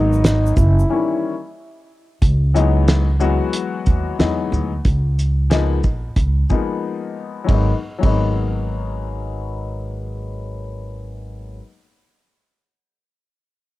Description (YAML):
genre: hip hop, jazz-hop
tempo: 91 BPM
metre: 4/4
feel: swing 65% on 16ths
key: G# minor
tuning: A4 = 440 Hz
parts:
  - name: mellow trombone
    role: melody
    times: 0.0-1.6 s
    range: D#4 to E4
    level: -21 LUFS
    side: equal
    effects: cassette tape, analog delay
  - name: warm upright piano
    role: accompaniment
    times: 0.0-11.6 s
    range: D#3 to F#4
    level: -23 LUFS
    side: left 6 dB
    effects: low-pass filter, cassette tape
  - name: upright bass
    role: bass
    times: 0.0-11.6 s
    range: F#1 to E2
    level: -19 LUFS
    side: right 1 dB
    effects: none
  - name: egg shaker and congas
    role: percussion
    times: 0.1-0.9 s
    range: none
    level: -38 LUFS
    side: right 9 dB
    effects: none
  - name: cloth-damped thuddy drum kit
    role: drums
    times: 0.2-8.2 s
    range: hi-hat, kick drum, ride cymbal, shaker, snare drum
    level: -18 LUFS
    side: right 1 dB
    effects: cassette tape
room: light reverb, small room ambience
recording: home recording on cassette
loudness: -16 LUFS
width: side -17 dB against mid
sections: 0.0-2.2 A section; 2.2-7.5 B section; 7.5-10.1 C section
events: break 0.9-2.2, 6.8-7.5; filter sweep on upright piano 2.2-7.5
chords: 0.0 G#m9; 0.9 D#7b9; 2.2 C#m11; 4.9 C#13; 7.5 G#m9